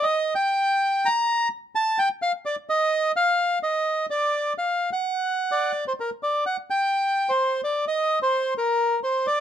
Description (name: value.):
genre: tango.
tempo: 129 BPM.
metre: 4/4.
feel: rubato.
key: G harmonic minor from 6.0 s.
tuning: A4 = 441 Hz.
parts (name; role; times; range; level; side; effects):
bandoneon; solo; 0.0-9.4 s; Bb4 to Bb5; -21 LUFS; equal; none.
room: light reverb.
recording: minimal, uncompressed stereo recording.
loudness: -21 LUFS.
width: side -9 dB against mid.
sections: 0.0-6.0 A section; 6.0-9.4 B section.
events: none.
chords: none.